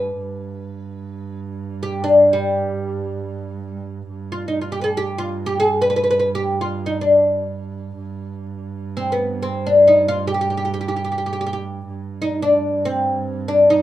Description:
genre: Persian modal ensemble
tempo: free time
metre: none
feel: none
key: G dastgah homayun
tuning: A4 = 440 Hz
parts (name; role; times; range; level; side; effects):
- oud; melody; 0.0-13.8 s; G3 to B4; -17 LUFS; left 1 dB; none
- warm double bass; drone; 0.0-13.8 s; G2; -28 LUFS; right 6 dB; none
room: wet studio reverb, RT60 0.6 s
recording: minimal, uncompressed stereo recording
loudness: -17 LUFS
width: side -13 dB against mid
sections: 0.0-4.1 A section; 4.1-13.8 A section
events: none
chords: none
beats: free time

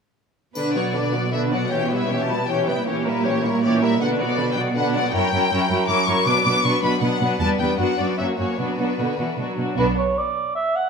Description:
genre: classical, dramatic, fast romantic movement for symphony orchestra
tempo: 156 BPM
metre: 3/4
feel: rubato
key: B minor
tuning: A4 = 439 Hz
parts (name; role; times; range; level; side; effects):
- warm symphonic violin section; melody; 0.6-10.0 s; F#4 to D6; -25 LUFS; left 4 dB; none
- rich symphonic violin section; second line; 0.6-10.0 s; C#4 to D5; -25 LUFS; left 2 dB; none
- warm symphonic viola section; accompaniment; 0.6-10.0 s; D3 to D4; -25 LUFS; right 2 dB; none
- dark symphonic cello section; bass; 0.6-10.1 s; E2 to B2; -25 LUFS; right 3 dB; none
- triangle; percussion; 0.6-1.3 s; none; -41 LUFS; left 5 dB; none
- dark cor anglais; second line; 9.8-10.9 s; B4 to F#5; -21 LUFS; right 3 dB; none
- rich symphonic double bass section; bass; 9.8-10.1 s; B1; -27 LUFS; right 2 dB; none
room: wet recital hall reverb, RT60 1.6 s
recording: minimal, uncompressed stereo recording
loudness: -19 LUFS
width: side -5 dB against mid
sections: 0.6-9.8 A section; 9.8-10.9 A section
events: none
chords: 0.6 Bm; 1.7 C#m7b5/B; 2.9 A#dim7; 4.0 Bm; 5.1 F#7b9; 6.3 Bm; 7.4 Em7; 7.8 Bm/F#; 8.2 F#; 8.6 Bm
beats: | 0.55 0.94 1.33 | 1.71 2.10 2.48 | 2.87 3.25 3.63 | 4.01 4.38 4.76 | 5.14 5.51 5.89 | 6.26 6.64 7.02 | 7.41 7.79 8.19 | 8.59 8.99 9.39 | 9.79 10.18 10.57

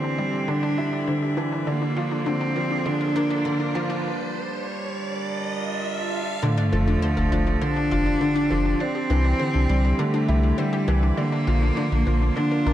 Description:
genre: piano and strings electronica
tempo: 101 BPM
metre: 4/4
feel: straight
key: F major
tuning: A4 = 440 Hz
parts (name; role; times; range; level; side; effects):
- bright cello; melody; 0.0-12.7 s; G3 to D4; -26 LUFS; equal; none
- rich string quartet; sustained chords; 0.0-12.7 s; F3 to E5; -32 LUFS; right 2 dB; low-pass filter
- analog pluck; arpeggios; 0.0-12.7 s; D4 to F5; -33 LUFS; left 6 dB; chorus, tape echo
- clear upright piano; riff; 0.0-12.7 s; D3 to Bb4; -26 LUFS; right 1 dB; none
- riser, swell and sub drop; sound effects; 1.0-8.8 s; none; -30 LUFS; equal; none
- warm sub bass; bass; 6.7-12.7 s; F1 to C2; -22 LUFS; equal; none
room: moderate lush hall reverb, RT60 2.7 s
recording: dark, warm production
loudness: -21 LUFS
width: side -12 dB against mid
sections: 0.0-6.4 A section; 6.4-12.7 B section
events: build-up 0.0-6.4; filter sweep on string quartet 0.0-6.4; filter sweep on synth arpeggio sound 0.0-6.4; riser 1.0-6.4; break 4.0-6.4; swell 5.2-6.4; drop 6.4-12.7; impact 6.4-8.8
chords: 0.0 Cadd9; 1.7 Bb; 4.0 Gmadd9; 6.4 F6; 8.8 Cadd9; 11.2 Bb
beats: 0.49 1.08 | 1.67 2.27 2.86 3.46 | 4.05 4.64 5.24 5.83 | 6.43 7.02 7.61 8.21 | 8.80 9.40 9.99 10.59 | 11.18 11.77 12.37

